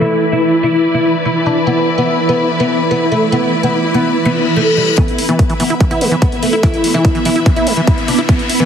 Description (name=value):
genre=psychedelic trance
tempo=145 BPM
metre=4/4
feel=straight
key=unclear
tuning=A4 = 440 Hz
part: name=oud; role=melody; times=0.0-8.7 s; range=G3 to E4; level=-16 LUFS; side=left 1 dB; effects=phaser, sidechain pumping, digital delay
part: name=bubbling stepped-filter texture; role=sustained chords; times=0.0-8.7 s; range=E3 to E4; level=-17 LUFS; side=right 2 dB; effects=chorus, built-in reverb, sidechain pumping
part: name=bright studio string section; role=texture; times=0.0-8.7 s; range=E4 to B5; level=-20 LUFS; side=left 3 dB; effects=sidechain pumping
part: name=reverse cymbal and riser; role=sound effects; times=4.3-8.7 s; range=none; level=-23 LUFS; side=left 6 dB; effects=none
part: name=overdriven acid bass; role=riff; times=5.0-8.7 s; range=D3 to E4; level=-19 LUFS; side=moving between left 5 dB and right 2 dB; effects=auto-pan, sidechain pumping, digital delay
part: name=electronic hi-hat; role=drums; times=5.0-8.7 s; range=none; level=-23 LUFS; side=left 1 dB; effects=overdrive, small room ambience
part: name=electronic kick drum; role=drums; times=5.0-8.4 s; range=none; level=-13 LUFS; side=equal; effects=overdrive, small room ambience
part: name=formant-sweep wobble bass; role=second line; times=6.0-7.0 s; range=A3 to B3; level=-29 LUFS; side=left 1 dB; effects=none
room=moderate plate reverb, RT60 2.0 s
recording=heavily compressed radio sound, multiband compression, low-pass filter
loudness=-11 LUFS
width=side -8 dB against mid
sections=0.0-5.0 A section; 5.0-8.7 B section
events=filter sweep on synth texture 0.0-5.0, 5.0-8.7; filter sweep 0.0-5.0; reverse cymbal 4.3-5.0; build-up 5.0-8.7; riser 5.0-8.7; filter sweep on acid bass 5.0-8.7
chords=0.0 E5